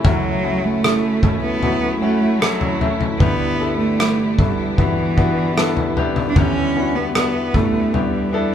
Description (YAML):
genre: pop ballad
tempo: 76 BPM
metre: 4/4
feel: straight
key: unclear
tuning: A4 = 440 Hz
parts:
  - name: clear concert grand piano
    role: accompaniment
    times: 0.0-8.5 s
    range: F#1 to A4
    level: -22 LUFS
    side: left 4 dB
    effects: none
  - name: warm symphonic string section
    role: sustained chords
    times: 0.0-8.5 s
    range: C#3 to E4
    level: -28 LUFS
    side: equal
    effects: none
  - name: fingerpicked plugged-in steel-string acoustic guitar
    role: arpeggios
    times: 0.0-8.5 s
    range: E2 to E4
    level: -28 LUFS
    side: left 5 dB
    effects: none
  - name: loose indie drum kit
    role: drums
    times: 0.0-8.1 s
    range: kick drum, rim click, toms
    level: -20 LUFS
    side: equal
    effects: none
  - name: rich cello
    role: melody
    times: 0.1-8.5 s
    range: E3 to D4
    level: -21 LUFS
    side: right 3 dB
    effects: none
room: moderate studio ambience, RT60 0.5 s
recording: band playing live in one room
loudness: -16 LUFS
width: side -9 dB against mid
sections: 0.0-8.5 A section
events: none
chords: 0.0 F#m7; 3.2 G6; 6.4 Em7